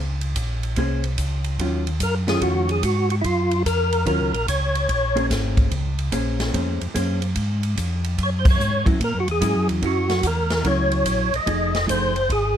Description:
soul jazz organ trio; 146 BPM; 4/4; swing 66% on 8ths; Bb minor; A4 = 438 Hz
mellow tonewheel organ; bass; 0.0-12.6 s; F1 to Bb2; -24 LUFS; equal; chorus vibrato, slow rotary speaker
swinging big-band drum kit; drums; 0.2-12.4 s; crash cymbal, hi-hat, kick drum, ride cymbal, snare drum; -26 LUFS; equal
vintage hollow-body jazz guitar; accompaniment; 0.8-12.1 s; Eb3 to C5; -25 LUFS; equal
percussive tonewheel organ; melody; 2.0-5.3, 8.2-12.6 s; E4 to Eb5; -22 LUFS; equal; slow rotary speaker, overdrive, chorus vibrato
light reverb; -19 LUFS; side -9 dB against mid
0.0-12.6 A section
band accent 8.4
0.0 Bbm9; 1.6 Ebm9; 4.9 Bbm9; 8.2 Gb7; 11.5 F7#9

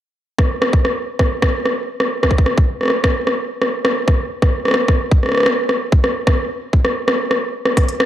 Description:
IDM; 130 BPM; 4/4; straight
electronic kick drum; drums; 0.4-7.9 s; -15 LUFS; equal; overdrive
organic electronic drum kit; drums; 0.4-8.1 s; hi-hat, rim click; -17 LUFS; equal; overdrive
light reverb; dry, gritty hardware recording, cassette tape; -15 LUFS; side -12 dB against mid
0.4-7.8 A section
kick drops out 6.8-7.8

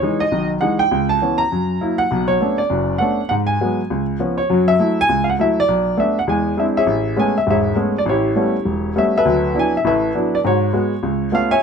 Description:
jazz; 202 BPM; 4/4; swing 62% on 8ths; F# minor, A major from 6.9 s; A4 = 435 Hz
clear grand piano; solo; 0.0-11.6 s; E1 to A#5; -15 LUFS; equal
light reverb; minimal, uncompressed stereo recording; -15 LUFS; side -6 dB against mid
0.0-6.9 A section; 6.9-11.6 B section
0.0 Emaj7; 0.9 C#m7b5; 1.5 F#7; 2.1 Bm9; 3.3 G#m7; 3.9 C#7; 4.5 F#m7; 5.7 Bm7; 6.3 Eaug7; 6.9 Amaj9; 8.1 A9; 9.2 D69; 10.4 G#7sus4; 11.0 C#7alt

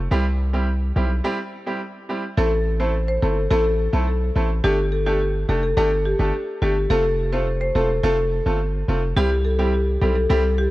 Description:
dancehall; 106 BPM; 4/4; straight; A minor; A4 = 443 Hz
hard-hitting 808-style bass; bass; 0.0-10.7 s; E1 to C2; -21 LUFS; equal
bright baby grand piano; accompaniment; 0.1-10.4 s; G3 to A4; -26 LUFS; right 1 dB
marimba with medium mallets; melody; 2.4-10.7 s; G4 to C5; -22 LUFS; left 1 dB; tape echo
light reverb, small room reverb; worn, warbling old tape, cassette tape, warbly pitch drift; -19 LUFS; side -18 dB against mid
0.0-2.4 A section; 2.4-10.7 B section
break 1.2-2.4
0.1 C; 2.4 Am; 4.6 Gsus2; 6.9 F; 9.2 C

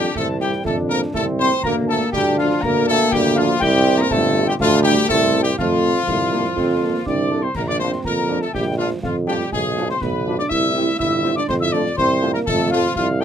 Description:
military-style march for wind band; 122 BPM; 2/4; straight; F major; A4 = 441 Hz
mellow trumpet section; melody; 0.0-13.2 s; F4 to E5; -22 LUFS; left 4 dB
piccolo; second line; 0.0-13.2 s; F5 to E6; -26 LUFS; left 3 dB
warm euphonium; second line; 0.0-13.1 s; F3 to E4; -24 LUFS; right 4 dB
warm trombone section; sustained chords; 0.0-13.2 s; F3 to D4; -24 LUFS; left 3 dB
clear tuba; bass; 0.0-13.2 s; G1 to F2; -21 LUFS; right 3 dB
concert snare drum, concert bass drum and clash cymbals; drums; 0.0-13.2 s; -29 LUFS; left 1 dB
dark French horn section; accompaniment; 0.4-13.2 s; E3 to A4; -30 LUFS; equal
light reverb; close, detailed microphones; -16 LUFS; side -9 dB against mid
0.0-7.5 A section; 7.5-13.2 B section
0.0 F; 1.6 Bb/D; 3.6 C; 4.6 Dm; 5.1 C; 5.6 F; 7.5 Bb; 9.5 Bdim; 10.5 C; 11.5 F

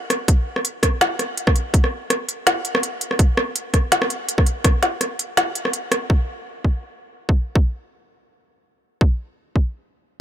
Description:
drum and bass; 165 BPM; 4/4; swing 54% on 16ths, half-time
organic electronic drum kit; drums; 0.1-6.0 s; hi-hat, rim click, snare drum; -20 LUFS; equal; overdrive, low-pass filter on snare, low-pass filter on hats, low-pass filter on room
electronic kick drum; drums; 0.3-9.6 s; -16 LUFS; equal
light reverb; -18 LUFS; side -10 dB against mid
0.0-6.1 A section; 6.1-10.2 B section
drop 0.0-6.1

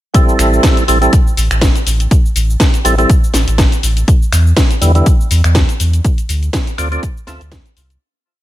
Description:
deep house; 122 BPM; 4/4; swing 55% on 16ths; A minor; A4 = 440 Hz
percussive tonewheel organ; stabs; 0.1-7.4 s; D3 to E5; -16 LUFS; right 1 dB; overdrive, chorus vibrato, slow rotary speaker, sidechain pumping, tape echo
electronic kick drum; drums; 0.1-7.6 s; -12 LUFS; equal
house drum kit; drums; 0.1-8.0 s; finger snaps, hi-hat, shaker, snare drum; -18 LUFS; left 1 dB
sub bass with octave; bass; 0.4-8.0 s; A1 to E2; -12 LUFS; equal; sidechain pumping
digital ambience; -10 LUFS; side -14 dB against mid
0.1-8.0 drop
drop 0.1-8.0; fade-out 5.4-8.0
0.1 Am7; 4.1 Em7; 6.0 Dm7

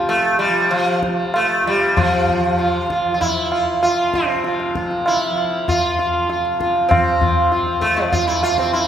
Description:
indian classical, Hindustani; 97 BPM; 4/4; straight; A4 = 439 Hz
sitar; melody; 0.0-8.9 s; F3 to F4; -17 LUFS; equal
tanpura; drone; 0.0-8.9 s; F2 to F3; -27 LUFS; equal
tabla; percussion; 0.1-8.9 s; -22 LUFS; right 1 dB
wet church reverb, RT60 3.3 s; recorded in a church or concert hall; -15 LUFS; side -9 dB against mid
0.0-2.0 A section; 2.0-8.9 B section
speeding up 0.0-8.9

